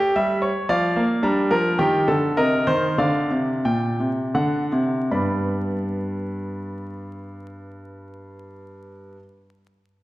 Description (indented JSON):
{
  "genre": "classical, baroque-style 3-part fugue for grand piano",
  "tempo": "73-113 BPM",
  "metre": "3/4",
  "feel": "straight",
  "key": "unclear",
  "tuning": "A4 = 440 Hz",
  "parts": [
    { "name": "warm grand piano", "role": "solo", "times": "0.0-9.2 s", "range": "G2 to B5", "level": "-20 LUFS", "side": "equal", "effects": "none" }
  ],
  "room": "wet recital hall reverb, RT60 1.8 s",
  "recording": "recorded in a church or concert hall, vinyl crackle",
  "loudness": "-19 LUFS",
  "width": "side -17 dB against mid",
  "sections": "0.0-5.1 A section; 5.1-10.0 B section",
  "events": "slowing down 0.4-5.1",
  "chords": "0.0 A7 (rootless); 0.7 Dm/F; 1.2 Gm; 2.4 Cm; 3.0 Gm; 4.3 D7; 5.1 G",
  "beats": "0.15 0.69 | 1.23 1.79 2.37 | 2.98 3.64 4.34 | 5.11 5.92 6.74 | 7.54 8.36"
}